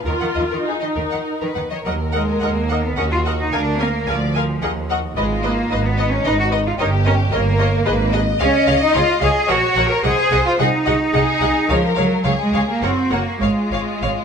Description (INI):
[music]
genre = quick classical-period movement for string orchestra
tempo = 98-112 BPM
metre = 3/4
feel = rubato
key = Eb minor, Db major from 8.4 s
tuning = A4 = 440 Hz
[part]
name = rich studio violin section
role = second line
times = 0.0-14.2 s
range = Eb4 to Eb5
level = -24 LUFS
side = left 4 dB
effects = none
[part]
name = rich symphonic violin section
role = melody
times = 0.1-14.1 s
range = Bb4 to Ab5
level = -27 LUFS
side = left 4 dB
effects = none
[part]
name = rich symphonic viola section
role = accompaniment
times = 0.1-14.1 s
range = Eb4 to F5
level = -24 LUFS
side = equal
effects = none
[part]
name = bright symphonic cello section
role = bass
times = 0.1-14.2 s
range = Eb3 to Bb4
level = -20 LUFS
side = right 1 dB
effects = none
[part]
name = rich symphonic double bass section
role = bass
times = 0.1-14.1 s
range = Gb1 to Eb2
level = -22 LUFS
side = right 2 dB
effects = none
[sound]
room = moderate recital hall reverb, RT60 1.6 s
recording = none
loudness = -16 LUFS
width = side -6 dB against mid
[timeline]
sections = 0.0-1.9 A section; 1.9-14.2 B section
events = none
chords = 0.1 Eb5; 1.9 Ebm; 3.5 Bb7/D; 4.6 Ebm; 5.2 Abm; 6.8 Eb7/G; 7.9 Abm; 8.4 Db; 9.5 Gb; 10.0 Ab7/C; 11.7 Db; 12.8 Gb; 13.4 Db/Ab